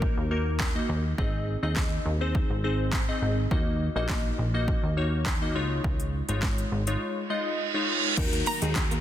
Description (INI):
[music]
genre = dance-pop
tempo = 103 BPM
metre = 4/4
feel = straight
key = Eb dorian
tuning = A4 = 440 Hz
[part]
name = glassy digital keys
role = accompaniment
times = 0.0-9.0 s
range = Ab3 to Eb5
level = -30 LUFS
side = left 2 dB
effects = chorus, sidechain pumping
[part]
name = plucky analog bass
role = bass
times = 0.0-9.0 s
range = Ab1 to Eb2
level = -29 LUFS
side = equal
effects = sidechain pumping
[part]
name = house drum kit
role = drums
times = 0.0-9.0 s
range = crash cymbal, handclaps, hi-hat, kick drum, shaker, snare drum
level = -29 LUFS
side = equal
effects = none
[part]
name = reverse cymbal and downlifter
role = sound effects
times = 7.3-9.0 s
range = none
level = -29 LUFS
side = right 5 dB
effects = none
[part]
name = sweeping resonant pad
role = sustained chords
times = 8.2-9.0 s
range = Eb3 to Gb4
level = -40 LUFS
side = equal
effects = chorus, sidechain pumping
[part]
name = twelve-string electric guitar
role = riff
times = 8.3-9.0 s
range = Ab3 to Bb3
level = -37 LUFS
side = right 4 dB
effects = ensemble chorus
[part]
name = wide unison pluck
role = melody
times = 8.5-9.0 s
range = Bb5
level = -32 LUFS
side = right 1 dB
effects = tape echo
[sound]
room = light reverb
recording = dense, heavily limited modern master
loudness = -25 LUFS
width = side -11 dB against mid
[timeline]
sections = 0.0-8.2 A section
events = reverse cymbal 7.3-8.2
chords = 0.0 Ebm; 1.2 Ab; 3.5 Ebm; 5.6 Dbadd9; 8.2 Ebm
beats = 0.02 0.60 | 1.18 1.77 2.35 2.93 | 3.51 4.10 4.68 5.26 | 5.84 6.43 7.01 7.59 | 8.17 8.76